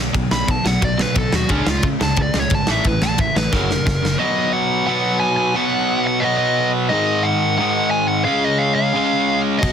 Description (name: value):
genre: punk rock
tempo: 178 BPM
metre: 4/4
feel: straight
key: B major from 4.2 s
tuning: A4 = 439 Hz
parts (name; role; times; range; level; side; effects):
- cranked stack guitar; riff; 0.0-9.7 s; F#2 to C#4; -19 LUFS; equal; overdrive
- picked electric bass; bass; 0.0-4.1, 9.6-9.7 s; F#1 to C#3; -24 LUFS; equal; none
- big rock drum kit; drums; 0.1-4.1, 9.6-9.7 s; crash cymbal, kick drum, ride cymbal, snare drum; -21 LUFS; equal; none
- dark smooth lead guitar; melody; 0.3-9.7 s; D4 to B5; -20 LUFS; equal; overdrive
room: light reverb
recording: dense, heavily limited modern master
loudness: -16 LUFS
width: side -8 dB against mid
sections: 0.0-4.2 A section; 4.2-9.7 B section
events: lead electric guitar solo 0.0-4.2; drum fill 3.5-4.2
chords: 0.0 B5; 1.5 C#5; 2.7 A5; 3.5 F#; 4.2 B; 6.9 G#5; 8.3 C#